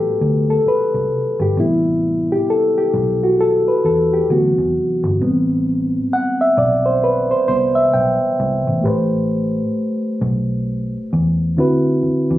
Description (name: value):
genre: R&B, neo-soul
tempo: 66 BPM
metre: 4/4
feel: swing 61% on 16ths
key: A dorian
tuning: A4 = 440 Hz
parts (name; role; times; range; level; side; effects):
- mellow reed electric piano; accompaniment; 0.0-12.4 s; C3 to G5; -16 LUFS; equal; plate reverb
- vintage muted fingered electric bass; bass; 0.0-12.4 s; G1 to E2; -21 LUFS; equal; none
room: moderate small room reverb, RT60 0.5 s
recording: recorded on a phone in the room, club reverb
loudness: -15 LUFS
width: side -14 dB against mid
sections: 0.0-8.8 A section; 8.8-12.4 B section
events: reed electric piano solo 0.0-8.8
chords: 0.0 Gmaj9; 1.6 Am9; 4.3 D13; 5.2 Am9; 11.6 D13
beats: 0.65 | 1.56 2.47 3.38 4.29 | 5.20 6.11 7.02 7.93 | 8.84 9.74 10.65 11.56